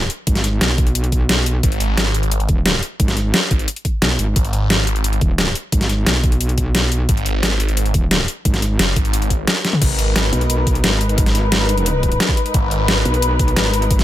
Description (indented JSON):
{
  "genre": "dark technical drum and bass",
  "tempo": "176 BPM",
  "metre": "4/4",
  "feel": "straight",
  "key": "G# minor",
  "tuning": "A4 = 440 Hz",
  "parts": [
    { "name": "metallic wobble bass", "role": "bass", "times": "0.0-14.0 s", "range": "D#1 to B1", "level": "-18 LUFS", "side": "equal", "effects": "chorus" },
    { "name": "dubstep drum kit", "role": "drums", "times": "0.1-14.0 s", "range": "crash cymbal, hi-hat, snare drum, toms", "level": "-18 LUFS", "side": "equal", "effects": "overdrive" },
    { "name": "electronic kick drum", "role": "drums", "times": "0.3-14.0 s", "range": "none", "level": "-18 LUFS", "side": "equal", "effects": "overdrive" },
    { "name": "phased detuned saw bass", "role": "bass", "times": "1.6-10.3, 12.5-13.0 s", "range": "F#1 to G#1", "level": "-18 LUFS", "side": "equal", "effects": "phaser, tube saturation, sidechain pumping" },
    { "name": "muted studio string section", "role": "sustained chords", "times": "9.8-14.0 s", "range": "G#3 to B4", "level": "-22 LUFS", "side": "left 2 dB", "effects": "sidechain pumping" }
  ],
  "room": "little or no reverb",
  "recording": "none",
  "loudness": "-15 LUFS",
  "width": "side -14 dB against mid",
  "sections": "0.0-9.8 A section; 9.8-14.0 A section",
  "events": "drop 0.0-9.8, 9.8-14.0; drum fill 9.6",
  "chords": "0.0 G#m",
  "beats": "| 0.27 0.61 0.95 1.29 | 1.63 1.98 2.31 2.66 | 3.00 3.34 3.68 4.02 | 4.36 4.70 5.04 5.38 | 5.72 6.07 6.41 6.75 | 7.09 7.43 7.77 8.11 | 8.45 8.79 9.13 9.47 | 9.81 10.16 10.50 10.84 | 11.18 11.52 11.86 12.20 | 12.54 12.88 13.22 13.56 | 13.91"
}